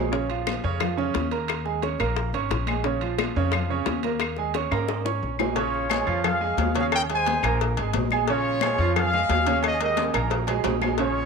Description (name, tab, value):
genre	latin, salsa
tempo	177 BPM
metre	4/4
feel	straight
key	unclear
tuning	A4 = 440 Hz
part	clear baby grand piano	accompaniment	0.0-11.3 s	Db3 to Db6	-27 LUFS	right 9 dB	none
part	upright bass	bass	0.0-11.3 s	Ab1 to Ab2	-29 LUFS	left 2 dB	none
part	bongos and cowbell	percussion	0.1-11.2 s	none	-32 LUFS	left 14 dB	none
part	congas	percussion	0.1-11.3 s	none	-32 LUFS	left 15 dB	none
part	timbales and agogo bells	percussion	0.3-11.2 s	none	-32 LUFS	right 11 dB	none
part	claves	percussion	0.5-11.0 s	none	-32 LUFS	left 15 dB	none
part	mellow trumpet section	melody	5.6-11.3 s	F4 to Ab5	-26 LUFS	left 2 dB	none
room	moderate echo chamber reverb, RT60 1.8 s, small room ambience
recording	1960s-style stereo with parts hard left and right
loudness	-22 LUFS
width	side -5 dB against mid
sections	0.0-5.6 A section; 5.6-11.3 B section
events	drum fill 4.7-5.6, 10.0-11.0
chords	0.1 Bbm; 1.5 Eb7sus4; 2.8 Bbm; 4.2 Eb7sus4; 5.6 Bbm7; 6.9 Eb7sus4; 8.3 Bbm7; 9.6 Eb7sus4